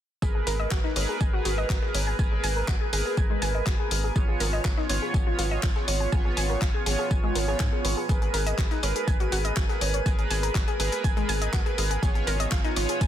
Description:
progressive house; 122 BPM; 4/4; straight; G# dorian; A4 = 443 Hz
analog pluck; arpeggios; 0.2-13.1 s; G#3 to G#5; -32 LUFS; left 2 dB; chorus, sidechain pumping, ping-pong delay
chorused polysynth; stabs; 0.2-13.1 s; B3 to C#5; -30 LUFS; right 3 dB; sidechain pumping, ping-pong delay
tight sequencer bass; bass; 0.2-13.1 s; G#1 to G#2; -30 LUFS; equal; sidechain pumping
dusty soul sampler-style drum kit; drums; 0.2-13.1 s; hi-hat, snare drum, tambourine; -41 LUFS; left 3 dB
electronic kick drum; drums; 0.2-13.1 s; -25 LUFS; equal; overdrive
drifting glass-harmonics texture; texture; 1.4-13.1 s; G#5; -39 LUFS; right 1 dB; chorus, built-in reverb, sidechain pumping
deep house drum kit; drums; 0.5-13.1 s; handclaps, hi-hat; -32 LUFS; left 3 dB; overdrive
light reverb; dense, heavily limited modern master; -23 LUFS; side -11 dB against mid
0.2-13.1 A section
filter sweep on synth pluck 0.2-13.1
0.2 G#madd9; 4.2 C#7/G#; 8.1 G#madd9; 12.0 C#7/G#
| 0.22 0.71 1.21 1.70 | 2.19 2.68 3.17 3.67 | 4.16 4.65 5.14 5.63 | 6.12 6.62 7.11 7.60 | 8.09 8.58 9.08 9.57 | 10.06 10.55 11.04 11.54 | 12.03 12.52 13.01

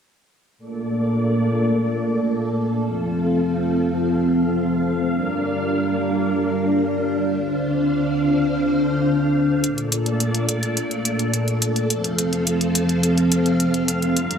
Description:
synthwave; 106 BPM; 4/4; straight; A4 = 435 Hz
string machine, full ensemble; sustained chords; 0.6-14.4 s; Bb2 to F5; -19 LUFS; equal; ensemble chorus
electronic hi-hat; drums; 9.6-14.4 s; -23 LUFS; equal; overdrive
moderate lush hall reverb, RT60 1.6 s; -18 LUFS; side -7 dB against mid
0.6-14.4 A section
filter sweep on string machine 0.6-14.4
0.6 Bbmaj7; 2.8 F; 5.1 Gm7; 7.4 Dm7; 9.6 Bbmaj7; 11.9 F
| 0.58 1.15 1.71 2.28 | 2.85 3.41 3.98 4.54 | 5.11 5.68 6.24 6.81 | 7.37 7.94 8.51 9.07 | 9.64 10.20 10.77 11.34 | 11.90 12.47 13.03 13.60 | 14.17

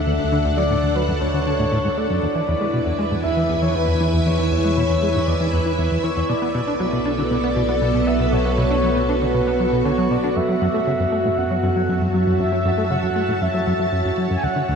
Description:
ambient, sequencer-driven space music; 118 BPM; 4/4; straight; F# minor; A4 = 439 Hz
breathy flute-like synth lead; melody; 0.0-14.8 s; B4 to G#5; -24 LUFS; equal; wide subtle chorus, shimmer reverb, tape echo
string machine, full ensemble; sustained chords; 0.0-14.8 s; B3 to A5; -22 LUFS; right 1 dB; ensemble chorus, shimmer reverb
analog drone; bass; 0.0-14.8 s; B1 to F#2; -25 LUFS; equal; chorus
plucky analog bass; riff; 0.1-14.8 s; D2 to D4; -23 LUFS; equal; wide subtle chorus, cassette tape, shimmer reverb, tape echo
wet cathedral reverb, RT60 5.8 s; in a vast, echoing space; -17 LUFS; side -6 dB against mid
0.0-14.8 A section
0.0 Dmaj7; 2.2 E7; 6.3 Bm7; 10.4 F#m7
| 0.19 0.70 1.21 1.72 | 2.23 2.74 3.25 3.75 | 4.26 4.77 5.28 5.79 | 6.29 6.80 7.31 7.82 | 8.33 8.84 9.35 9.86 | 10.36 10.87 11.38 11.89 | 12.40 12.91 13.41 13.92 | 14.43

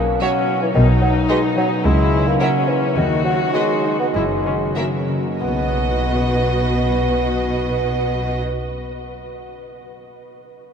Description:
cinematic, playful, whimsical film cue; 92-112 BPM; 4/4; straight; B major; A4 = 440 Hz
rich chamber viola section; accompaniment; 0.0-8.4 s; A#3 to F#4; -25 LUFS; left 3 dB
warm bassoon; accompaniment; 0.0-8.4 s; D#3 to B3; -22 LUFS; equal
concert harp; arpeggios; 0.0-9.3 s; F#2 to F#5; -24 LUFS; left 1 dB
rich chamber double bass section; bass; 0.0-8.4 s; F#1 to D#2; -22 LUFS; equal
rich symphonic cello section; bass; 0.0-8.4 s; C#2 to B2; -24 LUFS; equal
clear chamber violin section; melody; 0.2-8.4 s; D#5 to E5; -32 LUFS; right 1 dB
rich chamber violin section; second line; 0.2-8.4 s; E4 to C#5; -30 LUFS; right 2 dB
wet huge ambient reverb, RT60 8.9 s; in a vast, echoing space; -16 LUFS; side -7 dB against mid
0.0-5.4 A section; 5.4-10.5 B section
slowing down 0.0-5.4
0.0 F#/B; 0.7 B; 1.8 A#dim/C#; 3.0 B/D#; 4.1 F#add9; 5.4 B
0.21 | 0.75 1.29 1.84 2.40 | 2.96 3.55 4.14 4.76 | 5.41 6.04 6.68 7.32 | 7.95 8.59 9.23

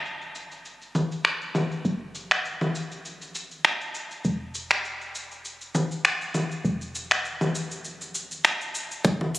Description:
organic downtempo; 100 BPM; 4/4; swing 55% on 16ths; A4 = 443 Hz
woody FM bass; bass; 0.0-9.4 s; E1 to F#1; -28 LUFS; equal; sidechain pumping
deep house drum kit; drums; 0.1-9.4 s; cabasa, congas, finger snaps, hi-hat; -24 LUFS; equal; overdrive, low-pass filter on perc, low-pass filter on hats, low-pass filter on snare
electronic kick drum; drums; 9.0-9.2 s; -24 LUFS; equal
wet concert hall reverb, RT60 2.4 s; recorded on a phone in the room, studio ambience, compression; -25 LUFS; side -17 dB against mid
0.0-9.0 A section
0.05 0.65 1.25 | 1.85 2.45 3.05 3.65 | 4.25 4.85 5.45 6.05 | 6.65 7.25 7.85 8.45 | 9.05

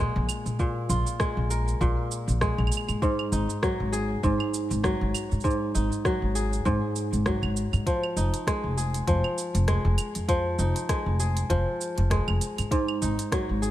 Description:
folktronica; 99 BPM; 4/4; swing 56% on 16ths; A4 = 440 Hz
kora; arpeggios; 0.0-13.7 s; Ab2 to Bb4; -28 LUFS; equal; digital delay
upright bass; bass; 0.0-13.7 s; F1 to Bb2; -26 LUFS; equal
organic electronic drum kit; drums; 0.3-13.7 s; cabasa, claves, hi-hat, rim click; -33 LUFS; right 2 dB; small room ambience
electronic kick drum; drums; 0.6-13.5 s; -28 LUFS; equal; small room ambience
light reverb; -24 LUFS; side -13 dB against mid
0.0-13.7 A section
0.0 Bb5; 3.0 Ab5; 7.9 Fm7; 12.7 Ab5
| 0.59 1.20 1.81 2.41 | 3.02 3.62 4.23 4.84 | 5.44 6.05 6.66 7.26 | 7.87 8.47 9.08 9.69 | 10.29 10.90 11.50 12.11 | 12.71 13.32

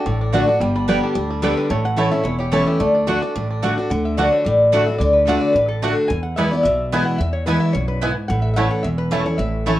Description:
bluegrass; 219 BPM; 4/4; swing 54% on 8ths; D major; A4 = 439 Hz
bluegrass banjo; melody; 0.0-9.7 s; G3 to G4; -28 LUFS; right 3 dB; plate reverb
lap resonator guitar; melody; 0.0-9.8 s; A4 to B5; -21 LUFS; left 1 dB; plate reverb
picked steel-string acoustic guitar; accompaniment; 0.0-9.8 s; E2 to G4; -21 LUFS; left 1 dB
upright bass; bass; 0.1-9.8 s; E1 to E2; -23 LUFS; equal
mandolin; stabs; 0.3-9.8 s; A3 to A5; -23 LUFS; right 3 dB
moderate studio reverb, RT60 0.5 s; worn, warbling old tape, cassette tape, warbly pitch drift; -16 LUFS; side -14 dB against mid
0.0-3.9 A section; 3.9-9.8 B section
0.0 D; 0.6 G; 1.7 A; 2.8 D; 6.1 E; 8.3 A
0.06 0.33 | 0.61 0.88 1.16 1.43 | 1.70 1.98 2.25 2.53 | 2.80 3.08 3.35 3.63 | 3.90 4.18 4.45 4.73 | 5.00 5.28 5.55 5.82 | 6.10 6.37 6.65 6.92 | 7.20 7.47 7.75 8.02 | 8.29 8.57 8.84 9.12 | 9.39 9.66

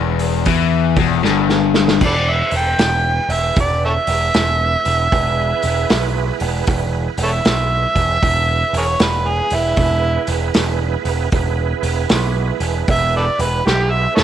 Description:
blues rock power trio and southern rock; 77 BPM; 4/4; swing 65% on 8ths; E major; A4 = 440 Hz
overdriven electric guitar; riff; 0.0-2.0 s; E2 to E3; -16 LUFS; left 12 dB
growling picked electric bass; bass; 0.0-14.2 s; E1 to E2; -20 LUFS; right 1 dB; overdrive
vintage drum kit; drums; 0.2-14.2 s; crash cymbal, hi-hat, kick drum, snare drum; -20 LUFS; right 1 dB
overdriven tonewheel organ; sustained chords; 2.0-14.2 s; B3 to C5; -25 LUFS; right 12 dB; slow rotary speaker, chorus vibrato
overdriven harmonica; melody; 2.1-14.2 s; E4 to G5; -18 LUFS; right 1 dB
light reverb; 1960s-style stereo with parts hard left and right; -14 LUFS; side -10 dB against mid
0.0-2.0 A section; 2.0-14.2 B section
drum fill 1.2-2.0, 13.7-14.2; harmonica solo 2.0-14.2
0.0 N.C.; 2.0 E
0.47 1.25 | 2.02 2.80 3.57 4.35 | 5.12 5.90 6.68 7.45 | 8.23 9.01 9.78 10.56 | 11.33 12.11 12.88 13.66

